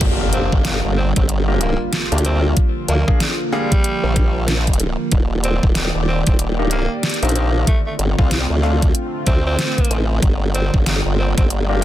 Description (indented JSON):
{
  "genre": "glitch hop",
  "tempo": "94 BPM",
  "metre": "4/4",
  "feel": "swing 61% on 16ths",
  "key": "G minor",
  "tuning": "A4 = 440 Hz",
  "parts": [
    { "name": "warm analog pad", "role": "sustained chords", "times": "0.0-11.8 s", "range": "D3 to D5", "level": "-25 LUFS", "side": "right 2 dB", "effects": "chorus, sidechain pumping" },
    { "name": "clear concert grand piano", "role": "stabs", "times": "0.0-11.8 s", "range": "A3 to Ab4", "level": "-25 LUFS", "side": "left 3 dB", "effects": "sidechain pumping, ping-pong delay" },
    { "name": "formant-sweep wobble bass", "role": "bass", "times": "0.0-11.8 s", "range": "Eb1 to D2", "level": "-19 LUFS", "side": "equal", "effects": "chorus" },
    { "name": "electronic kick drum", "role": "drums", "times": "0.0-11.5 s", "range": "none", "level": "-17 LUFS", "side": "equal", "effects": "overdrive" },
    { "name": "pop drum kit", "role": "drums", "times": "0.0-11.8 s", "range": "crash cymbal, hi-hat, snare drum", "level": "-23 LUFS", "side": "equal", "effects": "overdrive" },
    { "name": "impact", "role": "sound effects", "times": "0.0-2.6 s", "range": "none", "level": "-27 LUFS", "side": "equal", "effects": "none" },
    { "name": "growling tenor saxophone", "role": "melody", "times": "0.3-11.8 s", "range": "G3 to C4", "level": "-27 LUFS", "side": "equal", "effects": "ping-pong delay" }
  ],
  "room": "digital ambience",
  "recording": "dense, heavily limited modern master",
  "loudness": "-15 LUFS",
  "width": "side -13 dB against mid",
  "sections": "0.0-11.8 A section",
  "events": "drop 0.0-11.8; impact 0.0-2.6",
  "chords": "0.0 Gm7; 2.6 Bb; 5.1 Ebmaj7; 7.7 Dm7; 10.2 Gm7"
}